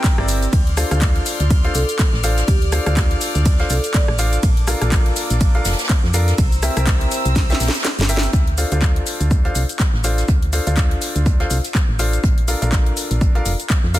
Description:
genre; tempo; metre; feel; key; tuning
piano house; 123 BPM; 4/4; swing 57% on 16ths; D minor; A4 = 440 Hz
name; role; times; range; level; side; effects
warm chamber string section; sustained chords; 0.0-8.3 s; Bb3 to F6; -29 LUFS; left 3 dB; sidechain pumping
clear grand piano; riff; 0.0-14.0 s; C4 to G5; -25 LUFS; equal; sidechain pumping, dub echo
electronic kick drum; drums; 0.0-13.8 s; none; -17 LUFS; equal; overdrive, studio reverb
house drum kit; drums; 0.0-14.0 s; handclaps, hi-hat, ride cymbal, rim click, shaker, snare drum; -24 LUFS; left 1 dB; overdrive, studio reverb
jazz brush drum kit; drums; 0.0-14.0 s; hi-hat, snare drum; -31 LUFS; right 2 dB; sidechain pumping on hats, high-pass filter on hats, studio reverb, soft clipping on snare, high-pass filter on snare, high-pass filter on room
solid FM bass; bass; 0.2-14.0 s; F1 to F2; -19 LUFS; equal; sidechain pumping
marimba with medium mallets; melody; 1.7-4.4 s; G4 to D5; -29 LUFS; right 2 dB; dub echo
room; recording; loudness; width
studio ambience; dense, heavily limited modern master; -15 LUFS; side -15 dB against mid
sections
0.0-8.3 A section; 8.3-14.0 B section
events
drop 0.0-8.3; drum fill 7.4-8.3; kick drops out 7.8-8.3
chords
0.0 C7; 0.5 Dm7; 4.4 Bbmaj7; 6.4 C7; 8.3 Dm7; 12.2 Bbmaj7

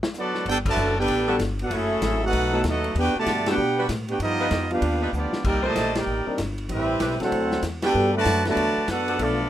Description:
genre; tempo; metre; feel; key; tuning
jazz, big band swing; 192 BPM; 4/4; swing 63% on 8ths; G major; A4 = 440 Hz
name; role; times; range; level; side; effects
vintage drum kit; drums; 0.0-9.3 s; crash cymbal, hi-hat, kick drum, ride cymbal, snare drum; -31 LUFS; left 1 dB; none
clear trumpet section; melody; 0.2-9.5 s; B3 to A5; -26 LUFS; equal; none
mellow trombone section; second line; 0.2-9.5 s; Bb2 to G4; -26 LUFS; right 2 dB; none
upright bass; bass; 0.5-9.5 s; F#1 to B2; -28 LUFS; left 1 dB; none
dark grand piano; accompaniment; 1.3-9.4 s; F#3 to B4; -28 LUFS; left 3 dB; none
mellow saxophone section; sustained chords; 1.3-9.2 s; Bb2 to C5; -30 LUFS; equal; none
room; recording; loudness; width
moderate small room reverb, RT60 0.5 s; rough home demo mix; -21 LUFS; side -12 dB against mid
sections
0.5-9.5 A section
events
band accent 0.6, 3.4, 5.9, 7.8; drum fill 5.1-5.4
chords
0.5 Gmaj9; 1.7 F#m9; 2.3 B7; 3.0 Em11; 4.2 G7b13; 5.4 Cm9; 6.7 Am11; 7.3 D9; 7.9 Gmaj9

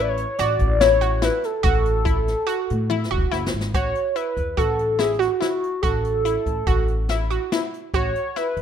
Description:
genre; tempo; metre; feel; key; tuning
progressive instrumental, band music in an uneven meter; 143 BPM; 5/4; straight; A major; A4 = 440 Hz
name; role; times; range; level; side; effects
hollow square lead; melody; 0.0-8.6 s; F#4 to D5; -22 LUFS; left 1 dB; chorus, phaser
glassy wavetable pluck; arpeggios; 0.0-8.6 s; E4 to F#4; -26 LUFS; right 1 dB; chorus
upright bass; bass; 0.0-8.6 s; E1 to A2; -24 LUFS; equal; none
jazz brush drum kit; drums; 0.2-8.6 s; hi-hat, kick drum, snare drum, toms; -26 LUFS; equal; none
room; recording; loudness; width
light reverb, small room reverb; rough home demo mix; -19 LUFS; side -8 dB against mid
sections
0.0-3.7 A section; 3.7-8.6 B section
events
drum fill 2.9-3.7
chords
0.0 A5; 3.7 A6

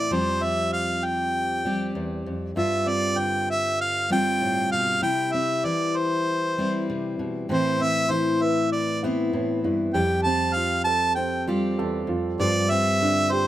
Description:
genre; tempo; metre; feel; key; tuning
acoustic folk duo or small band; 98 BPM; 4/4; straight; unclear; A4 = 440 Hz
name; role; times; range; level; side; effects
warm harmonica; melody; 0.0-13.5 s; C5 to A5; -24 LUFS; right 1 dB; plate reverb
fingerpicked steel-string acoustic guitar; accompaniment; 0.0-13.5 s; E2 to G4; -26 LUFS; left 1 dB; none
warm upright piano; arpeggios; 7.5-13.5 s; F3 to B4; -28 LUFS; right 3 dB; none
room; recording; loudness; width
light reverb; none; -22 LUFS; side -13 dB against mid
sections
0.0-13.5 A section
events
none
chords
0.1 Fsus2; 2.6 G7sus4; 5.0 C; 7.5 Amadd9; 10.0 Fadd9; 12.4 G7sus4

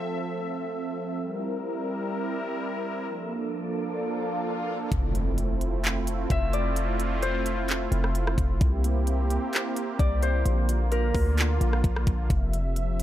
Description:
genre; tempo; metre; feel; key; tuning
hip hop, atmospheric cloud-rap; 130 BPM; 4/4; half-time; F major; A4 = 443 Hz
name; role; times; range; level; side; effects
sweeping resonant pad; sustained chords; 0.0-13.0 s; C3 to E5; -30 LUFS; right 2 dB; chorus, sidechain pumping
wind-like tuned noise texture; texture; 0.0-4.9, 12.9-13.0 s; A3 to E5; -40 LUFS; left 1 dB; built-in reverb
swell and impact; sound effects; 3.7-6.8 s; none; -36 LUFS; equal; none
warm 808-style bass; bass; 4.9-13.0 s; F1 to D2; -26 LUFS; equal; none
trap drum kit; drums; 4.9-13.0 s; handclaps, hi-hat, kick drum, rim click; -27 LUFS; equal; none
Celtic harp; melody; 6.3-13.0 s; Bb4 to E5; -32 LUFS; left 3 dB; low-pass filter, tape echo
room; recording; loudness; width
little or no reverb; none; -24 LUFS; side -13 dB against mid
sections
0.0-4.9 A section; 4.9-13.0 B section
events
swell 3.7-4.9; impact 4.9-6.8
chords
0.0 Fmaj7; 1.2 C7; 3.1 Bbmaj7; 4.9 Fmaj7; 8.6 C7; 10.5 Bb; 12.3 Fmaj7

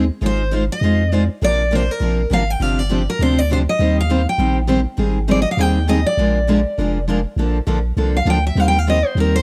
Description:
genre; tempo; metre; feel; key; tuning
acoustic string swing (jazz manouche); 201 BPM; 4/4; swing 58% on 8ths; unclear; A4 = 439 Hz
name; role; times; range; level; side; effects
picked steel-string acoustic guitar; accompaniment; 0.0-9.4 s; C3 to C5; -23 LUFS; equal; none
picked steel-string acoustic guitar; accompaniment; 0.0-9.4 s; C3 to C5; -29 LUFS; equal; none
punchy sub bass; bass; 0.0-9.4 s; F1 to F2; -21 LUFS; equal; none
picked steel-string acoustic guitar; melody; 0.3-9.4 s; Bb4 to G5; -23 LUFS; equal; none
room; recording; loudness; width
studio reverb; dry, close 1970s-style studio recording; -18 LUFS; mono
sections
0.0-7.4 A section; 7.4-9.4 B section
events
steel-string acoustic guitar solo 7.4-9.4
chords
0.2 Fm7/Ab; 1.4 Bbadd9; 2.6 G7sus4; 3.8 Eb6; 5.0 Abmaj7; 6.2 Bb7; 7.4 Bbmaj7; 8.6 Eb6

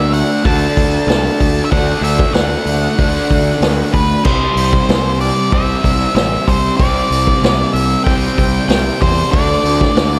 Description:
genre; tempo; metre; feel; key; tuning
classic rock; 94 BPM; 4/4; straight; unclear; A4 = 437 Hz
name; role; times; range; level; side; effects
octave-fuzz lead guitar; melody; 0.0-10.2 s; B4 to A5; -21 LUFS; equal; distortion
overdriven electric guitar; riff; 0.0-10.2 s; C3 to D4; -20 LUFS; equal; slapback echo
fuzz fingered electric bass; bass; 0.0-10.2 s; A1 to E2; -21 LUFS; equal; overdrive
vintage drum kit; drums; 0.1-10.1 s; crash cymbal, hi-hat, kick drum, snare drum; -19 LUFS; equal; none
room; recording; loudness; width
moderate concert hall reverb, RT60 2.3 s; big arena sound; -14 LUFS; mono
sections
0.0-10.2 A section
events
none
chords
0.0 D; 4.2 C; 9.3 D5

